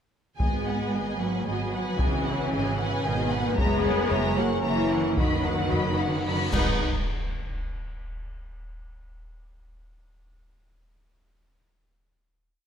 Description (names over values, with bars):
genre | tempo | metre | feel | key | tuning
cinematic, epic orchestral film score | 113 BPM | 3/4 | straight | G# minor | A4 = 436 Hz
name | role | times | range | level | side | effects
warm symphonic violin section | melody | 0.4-6.8 s | F#5 to B5 | -34 LUFS | left 2 dB | none
warm symphonic violin section | second line | 0.4-6.8 s | F#4 to G#5 | -33 LUFS | left 3 dB | none
warm symphonic viola section | accompaniment | 0.4-6.8 s | D#3 to D#4 | -32 LUFS | equal | none
clear trombone section | sustained chords | 0.4-6.8 s | D#3 to C#4 | -36 LUFS | right 4 dB | none
warm French horn section | sustained chords | 0.4-6.8 s | B3 to G#4 | -32 LUFS | left 6 dB | none
dark symphonic cello section | bass | 0.4-6.8 s | B2 to G#3 | -30 LUFS | right 2 dB | none
warm studio double bass section | bass | 0.4-6.8 s | F#1 to G#1 | -31 LUFS | right 3 dB | none
solo taiko drums | drums | 0.4-7.6 s | none | -29 LUFS | equal | none
cymbal swell, clash cymbals and concert bass drum | percussion | 3.6-7.6 s | none | -35 LUFS | equal | none
cymbal swell and impact | sound effects | 6.1-8.1 s | none | -38 LUFS | equal | none
room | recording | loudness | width
moderate scoring stage reverb, RT60 1.6 s | none | -23 LUFS | side -8 dB against mid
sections
0.4-6.8 theme; 6.8-8.4 final hit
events
cymbal swell 6.1-6.8; band accent 6.8-7.3; impact 6.8-8.4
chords
0.4 G#m7; 3.6 F#7; 5.2 B/F#; 6.5 G#m7; 6.8 N.C.